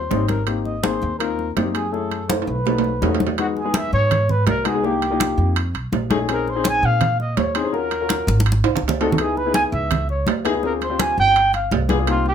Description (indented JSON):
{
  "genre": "Afro-Cuban jazz",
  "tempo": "165 BPM",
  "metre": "4/4",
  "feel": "straight",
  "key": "unclear",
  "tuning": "A4 = 440 Hz",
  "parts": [
    { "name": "breathy trumpet", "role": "melody", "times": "0.0-12.3 s", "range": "F4 to Ab5", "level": "-22 LUFS", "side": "right 1 dB", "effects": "none" },
    { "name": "upright bass", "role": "bass", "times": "0.0-12.3 s", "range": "G1 to Bb2", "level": "-23 LUFS", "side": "equal", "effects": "none" },
    { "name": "warm baby grand piano", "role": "accompaniment", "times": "0.1-12.3 s", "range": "G3 to Cb5", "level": "-23 LUFS", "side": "left 6 dB", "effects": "none" },
    { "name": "congas", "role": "percussion", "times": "0.1-12.3 s", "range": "none", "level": "-25 LUFS", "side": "left 1 dB", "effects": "none" },
    { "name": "timbales", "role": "percussion", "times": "0.1-12.3 s", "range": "none", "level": "-24 LUFS", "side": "right 9 dB", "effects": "none" }
  ],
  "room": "moderate studio reverb, RT60 0.5 s",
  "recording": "none",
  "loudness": "-17 LUFS",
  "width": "side -8 dB against mid",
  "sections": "0.0-3.4 A section; 3.4-12.3 B section",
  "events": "drum fill 2.3-3.4, 8.3-9.2",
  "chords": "0.5 Abmaj7; 1.9 Gbm7; 2.7 B9; 3.4 Emaj7; 4.8 Cm7; 5.6 F7alt; 6.3 Bbm11; 7.7 Ebm7; 8.5 Ab7b9; 9.2 Dbm9; 10.6 Dm7b5; 11.4 G7b9",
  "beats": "0.11 | 0.47 0.84 1.20 1.57 | 1.93 2.29 2.66 3.02 | 3.39 3.75 4.11 4.48 | 4.84 5.20 5.57 5.93 | 6.29 6.65 7.02 7.38 | 7.74 8.10 8.47 8.83 | 9.19 9.55 9.91 10.28 | 10.64 11.00 11.36 11.72 | 12.09"
}